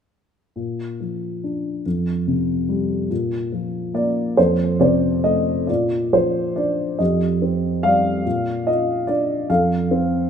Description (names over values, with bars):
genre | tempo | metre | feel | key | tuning
classical, lyrical solo piano | 47 BPM (dotted quarters) | 6/8 | rubato | Bb major | A4 = 440 Hz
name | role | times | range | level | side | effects
dark concert grand piano | solo | 0.6-10.3 s | F2 to F5 | -18 LUFS | equal | none
room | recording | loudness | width
light reverb | close, detailed microphones | -18 LUFS | side -7 dB against mid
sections
0.6-5.7 A section; 5.7-10.3 B section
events
grand piano fill 4.4-5.7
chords
0.6 Bb; 1.9 Fsus2; 3.1 Bb5; 4.4 F; 5.7 Bb; 7.0 Fsus2; 8.3 Bb; 9.5 F